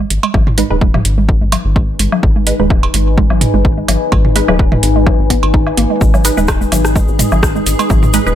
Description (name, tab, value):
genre	minimal techno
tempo	127 BPM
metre	4/4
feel	swing 54% on 16ths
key	G# minor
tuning	A4 = 439 Hz
part	hollow square pluck	riff	0.0-8.2 s	F#3 to D#4	-20 LUFS	right 2 dB	chorus, sidechain pumping, ping-pong delay
part	rubbery square bass	bass	0.0-8.3 s	D#1 to G#1	-16 LUFS	equal	sidechain pumping
part	deep dark ambient pad	texture	1.6-8.3 s	D#4 to G#5	-19 LUFS	left 4 dB	chorus, built-in reverb, sidechain pumping
part	booming analog drum machine	drums	0.1-8.2 s	hi-hat, rim click	-18 LUFS	right 2 dB	none
part	electronic cowbell, woodblock and toms	percussion	0.2-8.1 s	none	-19 LUFS	right 2 dB	tape echo
part	electronic kick drum	drums	0.3-8.0 s	none	-13 LUFS	equal	none
part	filtered dub chord stab	stabs	0.6-8.3 s	G#3 to B4	-19 LUFS	right 4 dB	phaser, cassette tape, tape echo
part	egg shaker	percussion	6.0-8.3 s	none	-24 LUFS	left 5 dB	none
part	swarming drone	texture	6.6-8.3 s	G#4	-26 LUFS	right 1 dB	built-in reverb, sidechain pumping
room	little or no reverb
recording	none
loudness	-10 LUFS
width	side -11 dB against mid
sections	0.0-8.3 A section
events	filter sweep on synth arpeggio sound 0.0-8.3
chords	0.0 G#m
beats	| 0.34 0.81 1.29 1.76 | 2.23 2.70 3.18 3.65 | 4.12 4.59 5.07 5.54 | 6.01 6.48 6.96 7.43 | 7.90